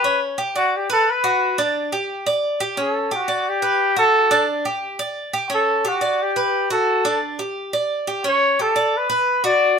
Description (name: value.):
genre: latin.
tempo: 176 BPM.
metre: 4/4.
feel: straight.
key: D major.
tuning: A4 = 440 Hz.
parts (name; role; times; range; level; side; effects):
mellow trumpet; melody; 0.0-9.8 s; F#4 to D5; -18 LUFS; left 1 dB; none.
Cuban tres; arpeggios; 0.0-9.8 s; C#4 to D5; -22 LUFS; right 1 dB; none.
room: light reverb.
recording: minimal, uncompressed stereo recording.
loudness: -18 LUFS.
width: side -6 dB against mid.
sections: 0.0-9.8 A section.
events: trumpet solo 0.0-9.8.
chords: 0.0 Dmaj7/C#; 0.7 F#madd11; 1.4 D; 2.1 G5; 2.8 A7; 3.5 G; 4.1 D; 4.8 G5; 5.5 A7; 6.2 G; 6.9 D; 7.6 G5; 8.2 A7; 8.9 Bm.